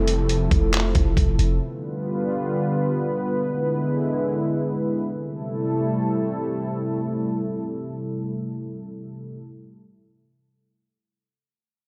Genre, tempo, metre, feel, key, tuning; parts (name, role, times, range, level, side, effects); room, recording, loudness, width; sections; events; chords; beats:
hip hop, atmospheric cloud-rap; free time; A minor; A4 = 440 Hz
dark analog pad; sustained chords; 0.0-9.4 s; C3 to B4; -26 LUFS; equal; chorus, sidechain pumping
clean 808-style bass; bass; 0.0-1.6 s; F1; -24 LUFS; equal
downlifter; sound effects; 0.0-1.6 s; -46 LUFS; equal
trip hop sampler-style drum kit; drums; 0.1-1.5 s; handclaps, hi-hat, kick drum; -24 LUFS; equal
light reverb; -24 LUFS; mono
0.0-5.1 A section; 5.1-8.6 B section
0.0 Fmaj7; 1.6 G7; 3.4 E7; 5.1 Am7
free time